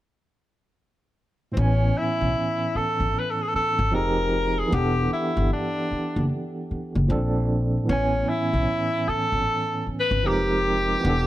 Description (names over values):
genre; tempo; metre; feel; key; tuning
R&B; 76 BPM; 4/4; swing 62% on 16ths; unclear; A4 = 440 Hz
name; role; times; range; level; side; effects
warm tenor saxophone; melody; 1.5-11.3 s; C4 to B4; -24 LUFS; left 1 dB; slapback echo
barky tine electric piano; accompaniment; 1.5-11.3 s; A2 to G#5; -26 LUFS; right 2 dB; overdrive, fast tremolo
upright bass; bass; 1.6-11.3 s; E1 to B1; -24 LUFS; equal; none
room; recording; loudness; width
little or no reverb; none; -21 LUFS; side -14 dB against mid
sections
0.0-1.6 A section; 1.6-11.3 B section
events
none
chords
0.0 N.C.; 1.6 Amaj9; 3.9 Fm11; 4.7 Em11; 7.1 Bbmaj9; 7.9 Amaj9; 10.2 Fm11